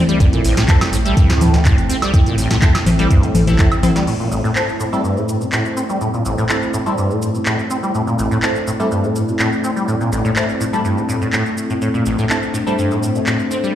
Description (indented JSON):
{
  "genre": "acid house",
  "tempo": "124 BPM",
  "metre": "4/4",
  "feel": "straight",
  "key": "A minor",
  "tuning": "A4 = 440 Hz",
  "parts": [
    { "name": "dark analog pad", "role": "sustained chords", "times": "0.0-13.8 s", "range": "A3 to G5", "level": "-22 LUFS", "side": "equal", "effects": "chorus, sidechain pumping" },
    { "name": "liquid acid bass", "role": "riff", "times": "0.0-13.7 s", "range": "A1 to C4", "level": "-19 LUFS", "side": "equal", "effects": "ensemble chorus, ping-pong delay" },
    { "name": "booming analog drum machine", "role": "drums", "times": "0.1-13.7 s", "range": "cabasa, congas, crash cymbal, handclaps, hi-hat, snare drum, woodblock", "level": "-20 LUFS", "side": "left 1 dB", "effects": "none" },
    { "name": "round analog bass", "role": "bass", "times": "0.2-3.9 s", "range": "G1 to D2", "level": "-18 LUFS", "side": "equal", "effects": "sidechain pumping" },
    { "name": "electronic kick drum", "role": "drums", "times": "0.2-3.7 s", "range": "none", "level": "-13 LUFS", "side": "equal", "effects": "overdrive" },
    { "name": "band-passed chord stab", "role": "stabs", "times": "0.7-12.7 s", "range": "C4 to A4", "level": "-25 LUFS", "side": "equal", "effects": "phaser, lush chorus, ping-pong delay" }
  ],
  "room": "moderate lush hall reverb, RT60 1.6 s, digital ambience",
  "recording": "played on a big sound system in a bare room, large studio reverb",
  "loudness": "-14 LUFS",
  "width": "side -11 dB against mid",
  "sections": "0.0-4.1 A section; 4.1-13.8 B section",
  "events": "drop 0.0-4.1",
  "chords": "0.0 Am"
}